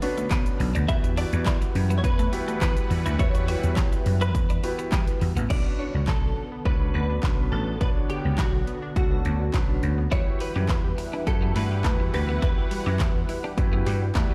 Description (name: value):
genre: dance-pop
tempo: 104 BPM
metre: 4/4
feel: straight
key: B minor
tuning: A4 = 440 Hz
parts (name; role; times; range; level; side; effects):
- direct-recorded clean electric guitar; melody; 0.0-14.1 s; F#4 to E5; -36 LUFS; equal; ensemble chorus, dub echo
- warm baby grand piano; accompaniment; 0.0-14.3 s; B3 to E5; -36 LUFS; equal; sidechain pumping
- sweeping resonant pad; sustained chords; 0.0-14.3 s; D3 to F#5; -38 LUFS; equal; chorus, sidechain pumping
- twelve-string electric guitar; riff; 0.0-5.5, 10.1-14.3 s; G3 to G4; -38 LUFS; equal; lush chorus
- pop drum kit; drums; 0.0-14.3 s; crash cymbal, handclaps, hi-hat, kick drum, shaker, snare drum; -27 LUFS; equal; none
- downlifter; sound effects; 0.0-0.9 s; none; barely audible; none; none
- vintage slap bass; bass; 0.3-14.3 s; A1 to E3; -28 LUFS; equal; sidechain pumping
- analog pluck; arpeggios; 5.5-14.3 s; D3 to G4; -41 LUFS; equal; none
room: little or no reverb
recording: played on a big sound system in a bare room, large studio reverb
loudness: -24 LUFS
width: mono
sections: 0.0-5.5 A section; 5.5-14.3 B section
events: grand piano fill 13.9-14.3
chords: 0.0 Bmadd9; 0.9 Emadd9; 5.5 Bmadd9; 10.1 Emadd9